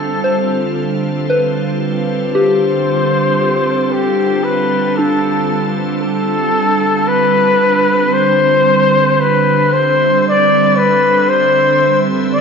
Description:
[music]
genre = ambient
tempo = 57 BPM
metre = 4/4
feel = straight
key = G mixolydian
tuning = A4 = 440 Hz
[part]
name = warm flugelhorn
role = melody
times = 0.0-12.4 s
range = G4 to D5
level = -13 LUFS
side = left 3 dB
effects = ping-pong delay
[part]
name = soft additive organ-like pad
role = sustained chords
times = 0.0-12.4 s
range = D3 to E5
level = -16 LUFS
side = right 4 dB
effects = ensemble chorus, built-in reverb
[part]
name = soft synth bell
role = arpeggios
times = 0.0-12.4 s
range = D4 to E5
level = -19 LUFS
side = left 3 dB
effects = chorus, ping-pong delay
[sound]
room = wet concert hall reverb, RT60 2.3 s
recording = nothing above 7.9 kHz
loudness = -11 LUFS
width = side -6 dB against mid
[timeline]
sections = 0.0-12.4 A section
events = fade-in on ambient pad 0.0-12.4; fade-in on flugelhorn 0.0-12.4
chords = 0.0 G7sus4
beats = 0.78 | 1.83 2.88 3.93 4.99 | 6.04 7.09 8.14 9.20 | 10.25 11.30 12.36

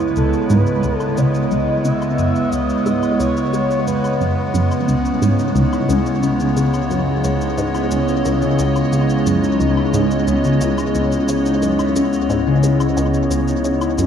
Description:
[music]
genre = ambient, sequencer-driven space music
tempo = 89 BPM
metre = 4/4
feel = straight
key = C# minor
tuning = A4 = 440 Hz
[part]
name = evolving wavetable pad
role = sustained chords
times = 0.0-14.1 s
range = C#3 to D#5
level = -20 LUFS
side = right 1 dB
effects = chorus, built-in reverb
[part]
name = analog drone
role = bass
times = 0.0-14.1 s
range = C#2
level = -26 LUFS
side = equal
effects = chorus
[part]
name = wind-like tuned noise texture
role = texture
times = 0.0-14.1 s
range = C#5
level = -30 LUFS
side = right 6 dB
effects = built-in reverb
[part]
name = expressive synth lead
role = melody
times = 0.2-4.3 s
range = A4 to E5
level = -24 LUFS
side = left 1 dB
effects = wide subtle chorus, tape echo
[part]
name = resonant blip pluck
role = riff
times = 0.2-14.1 s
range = C#2 to G#3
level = -21 LUFS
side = right 1 dB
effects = phaser, tape echo
[part]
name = cabasa and woodblock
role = percussion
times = 0.2-14.1 s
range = none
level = -34 LUFS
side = left 4 dB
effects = tape echo
[part]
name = concert harp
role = arpeggios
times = 4.7-14.1 s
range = C#3 to C#5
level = -19 LUFS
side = moving between left 6 dB and equal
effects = auto-pan, tape echo
[sound]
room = wet plate reverb, RT60 3.6 s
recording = echo-heavy mix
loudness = -15 LUFS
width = side -8 dB against mid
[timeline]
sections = 0.0-14.1 A section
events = fade-in on synth drone 0.0-14.1; fade-in on drum 0.0-14.1; filter sweep on synth arpeggio sound 0.0-14.1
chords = 0.0 C#m7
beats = 0.50 1.17 | 1.85 2.52 3.20 3.87 | 4.54 5.22 5.89 6.57 | 7.24 7.92 8.59 9.26 | 9.94 10.61 11.29 11.96 | 12.63 13.31 13.98

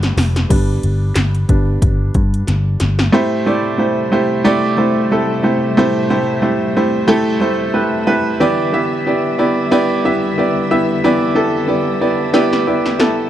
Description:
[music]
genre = piano-driven pop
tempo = 91 BPM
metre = 4/4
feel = swing 56% on 16ths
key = A minor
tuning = A4 = 439 Hz
[part]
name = clear upright piano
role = accompaniment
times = 0.0-13.3 s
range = A2 to E5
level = -14 LUFS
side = right 1 dB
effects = none
[part]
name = warm studio string section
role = sustained chords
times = 0.0-13.3 s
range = C3 to E5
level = -24 LUFS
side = left 5 dB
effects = none
[part]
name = vintage muted picked electric bass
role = bass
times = 0.0-3.1 s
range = F1 to G2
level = -15 LUFS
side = equal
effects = none
[part]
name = 80s electronic pad drums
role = drums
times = 0.0-3.1, 12.3-13.2 s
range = crash cymbal, handclaps, hi-hat, kick drum, snare drum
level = -17 LUFS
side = equal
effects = none
[sound]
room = little or no reverb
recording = dry, close 1970s-style studio recording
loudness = -13 LUFS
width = side -11 dB against mid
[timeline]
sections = 0.5-3.1 A section; 3.1-13.3 B section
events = drum fill 0.0-0.5, 2.5-3.1, 12.3-13.3; upright piano solo 0.5-3.1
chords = 0.0 G; 3.1 Am7; 8.4 Em7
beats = | 0.50 1.16 1.82 2.48 | 3.14 3.79 4.45 5.11 | 5.77 6.43 7.08 7.74 | 8.40 9.06 9.72 10.37 | 11.03 11.69 12.35 13.00

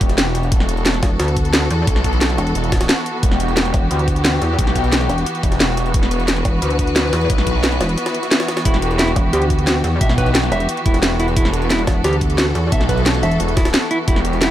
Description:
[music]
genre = dark technical drum and bass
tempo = 177 BPM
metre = 4/4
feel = straight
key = E minor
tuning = A4 = 439 Hz
[part]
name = rich studio string section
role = sustained chords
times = 0.0-14.5 s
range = E3 to B4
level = -22 LUFS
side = left 1 dB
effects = sidechain pumping
[part]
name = phased detuned saw bass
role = bass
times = 0.0-14.5 s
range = E1 to B1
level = -20 LUFS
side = equal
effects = phaser, overdrive, sidechain pumping
[part]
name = drum and bass drum kit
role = drums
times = 0.0-14.5 s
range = hi-hat, snare drum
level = -20 LUFS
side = equal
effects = none
[part]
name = electronic kick drum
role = drums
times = 0.0-14.1 s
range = none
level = -18 LUFS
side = equal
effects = none
[part]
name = jungle sampler-style drum kit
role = drums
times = 0.0-14.5 s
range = hi-hat, snare drum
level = -27 LUFS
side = equal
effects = none
[part]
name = pulsing pluck wobble bass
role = bass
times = 1.0-13.4 s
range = E1 to E2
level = -18 LUFS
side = equal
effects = chorus
[part]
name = swell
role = sound effects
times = 8.1-8.7 s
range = none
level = -34 LUFS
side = left 1 dB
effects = none
[part]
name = clean electric guitar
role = arpeggios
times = 8.7-14.5 s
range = E4 to E5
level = -22 LUFS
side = right 1 dB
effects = sidechain pumping, dub echo
[sound]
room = little or no reverb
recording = none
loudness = -14 LUFS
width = side -12 dB against mid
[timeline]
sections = 0.0-14.5 A section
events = swell 8.1-8.7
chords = 0.0 Em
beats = 0.18 | 0.52 0.86 1.20 1.53 | 1.87 2.21 2.55 2.89 | 3.23 3.57 3.91 4.25 | 4.59 4.92 5.26 5.60 | 5.94 6.28 6.62 6.96 | 7.30 7.64 7.98 8.31 | 8.65 8.99 9.33 9.67 | 10.01 10.35 10.69 11.03 | 11.37 11.71 12.04 12.38 | 12.72 13.06 13.40 13.74 | 14.08 14.42

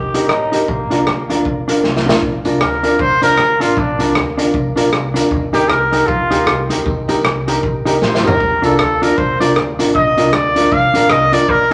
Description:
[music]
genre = ska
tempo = 155 BPM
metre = 4/4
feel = swing 59% on 8ths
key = Bb major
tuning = A4 = 440 Hz
[part]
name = growling tenor saxophone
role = melody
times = 0.0-1.5 s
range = Bb3 to G4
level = -23 LUFS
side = equal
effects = none
[part]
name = upright bass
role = bass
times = 0.0-11.7 s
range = A1 to Eb2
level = -27 LUFS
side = equal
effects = none
[part]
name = mellow electric guitar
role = accompaniment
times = 0.1-11.7 s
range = D4 to Bb4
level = -21 LUFS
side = equal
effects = slapback echo
[part]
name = bright upright piano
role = stabs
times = 0.1-11.7 s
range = D4 to Bb4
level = -23 LUFS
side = equal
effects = none
[part]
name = raw garage drum kit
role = drums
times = 0.1-11.7 s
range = hi-hat, kick drum, rim click, snare drum, toms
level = -22 LUFS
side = equal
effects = none
[part]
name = tambourine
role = percussion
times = 2.5-11.4 s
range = none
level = -41 LUFS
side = equal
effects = none
[part]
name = warm trumpet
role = melody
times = 2.6-11.7 s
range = D4 to F5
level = -17 LUFS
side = equal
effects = none
[sound]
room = wet large studio reverb, RT60 1.4 s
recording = none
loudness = -15 LUFS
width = mono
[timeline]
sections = 0.0-2.2 A section; 2.2-11.7 B section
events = drum fill 1.8-2.2, 8.0-8.4; trumpet solo 2.2-11.7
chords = 0.0 Eb; 0.7 Bb; 5.3 Eb; 8.4 Bb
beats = 0.29 | 0.68 1.07 1.45 1.84 | 2.23 2.61 3.00 3.38 | 3.77 4.16 4.54 4.93 | 5.32 5.70 6.09 6.47 | 6.86 7.25 7.63 8.02 | 8.40 8.79 9.17 9.56 | 9.94 10.33 10.71 11.10 | 11.48

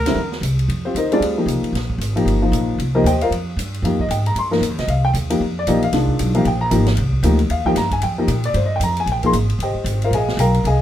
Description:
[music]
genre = modal jazz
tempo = 229 BPM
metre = 4/4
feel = swing 60% on 8ths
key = F dorian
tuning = A4 = 441 Hz
[part]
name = upright bass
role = bass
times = 0.0-10.8 s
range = G1 to Bb2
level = -19 LUFS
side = equal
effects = none
[part]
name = warm grand piano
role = accompaniment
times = 0.1-10.8 s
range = D3 to C6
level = -19 LUFS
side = left 1 dB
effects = none
[part]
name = swinging big-band drum kit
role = drums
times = 0.1-10.7 s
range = hi-hat, kick drum, ride cymbal, snare drum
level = -29 LUFS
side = right 1 dB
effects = none
[sound]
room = light reverb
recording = minimal, uncompressed stereo recording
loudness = -16 LUFS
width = side -11 dB against mid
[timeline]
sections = 0.7-9.1 A section; 9.1-10.8 A section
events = none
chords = 0.0 C9; 0.7 F9sus4; 9.1 Bb13sus4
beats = 0.16 0.42 | 0.68 0.95 1.21 1.47 | 1.74 2.00 2.26 2.52 | 2.79 3.05 3.31 3.57 | 3.83 4.09 4.36 4.62 | 4.88 5.14 5.40 5.67 | 5.93 6.19 6.45 6.71 | 6.97 7.24 7.50 7.76 | 8.02 8.28 8.55 8.81 | 9.07 9.33 9.60 9.86 | 10.12 10.38 10.64

